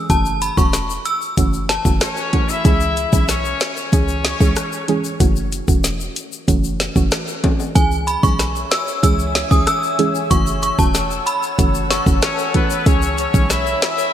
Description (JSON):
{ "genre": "dancehall", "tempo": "94 BPM", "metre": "4/4", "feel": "straight", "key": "unclear", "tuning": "A4 = 440 Hz", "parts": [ { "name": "soft round pluck", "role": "accompaniment", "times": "0.0-13.5 s", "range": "E3 to G#4", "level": "-22 LUFS", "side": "right 4 dB", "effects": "chorus, sidechain pumping" }, { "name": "synth chime", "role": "melody", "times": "0.1-1.8, 7.8-12.0 s", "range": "G#5 to E6", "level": "-21 LUFS", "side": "equal", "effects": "ensemble chorus, digital delay" }, { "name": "short 808-style bass", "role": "bass", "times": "0.1-13.8 s", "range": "E1 to C#2", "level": "-21 LUFS", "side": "equal", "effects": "none" }, { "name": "afro-pop drum kit", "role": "drums", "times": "0.1-14.0 s", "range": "hi-hat, kick drum, rim click, snare drum", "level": "-19 LUFS", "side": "equal", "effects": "none" }, { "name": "tube shaker and timbales", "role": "percussion", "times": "0.1-14.1 s", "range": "none", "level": "-30 LUFS", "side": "left 9 dB", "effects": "none" }, { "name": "clear horn section", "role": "second line", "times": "2.0-5.0, 12.2-14.1 s", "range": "B3 to E5", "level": "-22 LUFS", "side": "left 3 dB", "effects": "digital delay" }, { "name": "glassy FM pad", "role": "sustained chords", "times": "8.6-14.1 s", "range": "C#5 to E6", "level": "-24 LUFS", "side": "left 2 dB", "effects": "ensemble chorus, built-in reverb, sidechain pumping" } ], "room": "moderate lush hall reverb, RT60 2.6 s", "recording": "bright 1980s-style digital production", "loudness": "-15 LUFS", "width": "side -10 dB against mid", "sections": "0.0-14.1 A section", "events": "none", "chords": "0.1 F#m7; 2.7 C#m; 5.2 F#m7; 7.8 C#m; 10.3 F#m7; 12.9 C#m" }